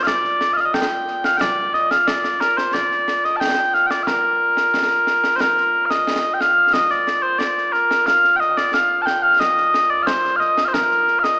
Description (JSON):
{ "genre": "scottish traditional, Scottish pipe music", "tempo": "90 BPM", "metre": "2/4", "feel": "straight", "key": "Bb major", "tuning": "A4 = 441 Hz", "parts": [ { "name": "mellow small bagpipes", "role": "melody", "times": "0.0-11.4 s", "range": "Bb2 to A5", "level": "-15 LUFS", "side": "equal", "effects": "none" }, { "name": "concert snare drum and concert bass drum", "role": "drums", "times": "0.1-11.4 s", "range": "none", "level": "-26 LUFS", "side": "equal", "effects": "none" } ], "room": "wet recital hall reverb, RT60 1.7 s", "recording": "recorded in a church or concert hall, AM radio sound", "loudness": "-15 LUFS", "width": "side -26 dB against mid", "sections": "0.0-5.4 A section; 5.4-11.4 B section", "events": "none", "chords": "none" }